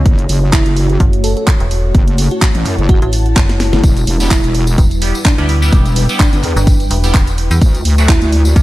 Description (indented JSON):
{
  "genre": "bass house",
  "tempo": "127 BPM",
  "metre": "4/4",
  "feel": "swing 55% on 16ths",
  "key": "E dorian",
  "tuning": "A4 = 439 Hz",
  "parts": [
    { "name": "dark analog pad", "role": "sustained chords", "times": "0.0-8.6 s", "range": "G3 to D5", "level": "-23 LUFS", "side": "left 2 dB", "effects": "chorus, phaser, sidechain pumping" },
    { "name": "metallic FM bass", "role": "bass", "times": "0.0-8.6 s", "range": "E1 to E2", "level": "-14 LUFS", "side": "equal", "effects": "sidechain pumping" },
    { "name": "ethereal airy pad", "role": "texture", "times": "0.0-8.6 s", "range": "C#4 to A5", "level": "-27 LUFS", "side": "left 1 dB", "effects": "ensemble chorus, built-in reverb, sidechain pumping" },
    { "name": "wobble bass", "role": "bass", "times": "0.1-8.5 s", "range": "E1 to F#2", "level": "-13 LUFS", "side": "equal", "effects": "chorus, tube saturation, sidechain pumping" },
    { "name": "electronic kick drum", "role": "drums", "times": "0.1-8.6 s", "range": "none", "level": "-11 LUFS", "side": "equal", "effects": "none" },
    { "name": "house drum kit", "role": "drums", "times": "0.1-8.6 s", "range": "handclaps, hi-hat, snare drum", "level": "-20 LUFS", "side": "right 1 dB", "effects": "none" },
    { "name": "bell-like FM electric piano", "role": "melody", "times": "0.5-8.5 s", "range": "D4 to A4", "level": "-22 LUFS", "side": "right 2 dB", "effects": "chorus, tremolo, tape echo" },
    { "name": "tambourine", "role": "percussion", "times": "3.8-8.6 s", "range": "none", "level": "-27 LUFS", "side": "left 2 dB", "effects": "none" },
    { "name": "band-passed chord stab", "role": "stabs", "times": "4.2-8.1 s", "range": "F#3 to G4", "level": "-22 LUFS", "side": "right 2 dB", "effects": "phaser, sidechain pumping, tape echo" }
  ],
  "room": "digital ambience",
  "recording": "none",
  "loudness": "-10 LUFS",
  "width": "side -17 dB against mid",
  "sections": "0.0-8.6 A section",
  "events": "drum fill 3.4-3.8",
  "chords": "0.1 F#m; 3.8 Em; 7.6 D"
}